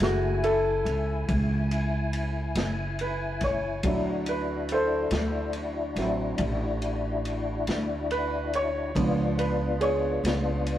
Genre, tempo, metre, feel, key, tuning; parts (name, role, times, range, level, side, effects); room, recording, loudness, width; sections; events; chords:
slow blues; 47 BPM (dotted quarters); 12/8; straight; F# minor; A4 = 442 Hz
clear upright piano; accompaniment; 0.0-10.6 s; E#3 to C#5; -28 LUFS; equal
tonewheel organ; sustained chords; 0.0-10.8 s; B3 to G#5; -32 LUFS; left 3 dB; slow rotary speaker, chorus vibrato
upright bass; bass; 0.0-10.8 s; F#1 to D2; -30 LUFS; right 1 dB
vintage drum kit; drums; 0.0-10.8 s; kick drum, ride cymbal, snare drum; -34 LUFS; left 1 dB
light reverb; rough rehearsal-room recording; -25 LUFS; side -12 dB against mid
0.0-10.8 A section
upright piano solo 0.0-10.8
0.0 F#m7; 3.8 D7; 9.0 C#7b9